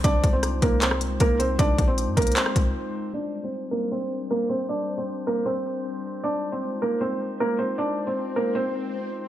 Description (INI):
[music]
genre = hip hop, trap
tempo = 155 BPM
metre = 4/4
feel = half-time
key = C minor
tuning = A4 = 441 Hz
[part]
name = felt-muted upright piano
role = melody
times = 0.0-9.3 s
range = Bb3 to D5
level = -25 LUFS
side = right 1 dB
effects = low-pass filter, ping-pong delay
[part]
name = glass harmonica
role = sustained chords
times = 0.0-9.3 s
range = G3 to C5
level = -32 LUFS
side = left 2 dB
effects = low-pass filter
[part]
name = clean 808-style bass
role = bass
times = 0.0-2.7 s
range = Bb1 to G2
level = -25 LUFS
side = equal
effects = none
[part]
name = trap drum kit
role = drums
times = 0.0-2.6 s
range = handclaps, hi-hat, kick drum, rim click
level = -23 LUFS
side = equal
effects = none
[part]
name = swell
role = sound effects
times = 8.0-9.3 s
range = none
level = -34 LUFS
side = left 6 dB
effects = none
[sound]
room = light reverb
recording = none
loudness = -22 LUFS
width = side -12 dB against mid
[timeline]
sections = 0.0-3.1 A section; 3.1-9.3 B section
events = break 2.8-3.1; filter sweep 3.1-9.3; swell 8.0-9.3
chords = 0.0 Ab6/C; 3.1 Csus2; 6.2 Ab6